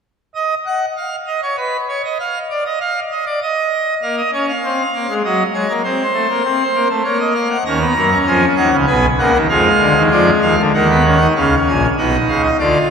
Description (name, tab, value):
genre	classical, baroque-style 3-part fugue for pipe organ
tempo	98 BPM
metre	3/4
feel	straight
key	Eb minor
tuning	A4 = 444 Hz
part	pipe organ, full organ	solo	0.3-12.9 s	Bb1 to Bb5	-13 LUFS	equal	none
room	wet church reverb, RT60 3.3 s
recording	recorded in a church or concert hall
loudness	-13 LUFS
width	side -6 dB against mid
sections	0.4-11.4 A section; 11.4-12.9 B section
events	none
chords	0.4 N.C.; 4.0 Bbm; 5.2 Ebm/Gb; 5.8 Am; 7.1 Bbm; 7.7 Ebm; 8.9 Abm/Cb; 9.5 Ddim; 10.7 Ebm; 11.4 Db